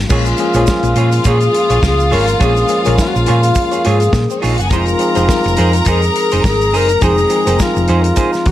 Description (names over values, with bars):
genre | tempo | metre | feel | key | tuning
disco | 104 BPM | 4/4 | swing 56% on 16ths | Bb minor | A4 = 439 Hz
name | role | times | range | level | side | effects
semi-hollow electric guitar | accompaniment | 0.0-8.5 s | Eb4 to Db5 | -21 LUFS | right 5 dB | none
tine electric piano | accompaniment | 0.0-8.5 s | Eb3 to Bb4 | -20 LUFS | left 3 dB | medium stereo tremolo
hollow-body short-scale fingered electric bass | bass | 0.0-8.5 s | F1 to Bb2 | -15 LUFS | equal | none
alto flute | melody | 0.1-8.5 s | F4 to Bb4 | -16 LUFS | left 1 dB | none
clear studio violin section | second line | 0.1-8.5 s | C4 to Bb5 | -20 LUFS | left 1 dB | none
damped 70s drum kit | drums | 0.1-8.5 s | crash cymbal, hi-hat, kick drum, snare drum | -18 LUFS | equal | none
tube shaker | percussion | 0.1-8.5 s | none | -31 LUFS | right 16 dB | none
room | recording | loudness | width
small room ambience | none | -11 LUFS | side -13 dB against mid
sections
0.1-8.5 A section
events
none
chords
0.1 Bbm7; 4.7 Fm7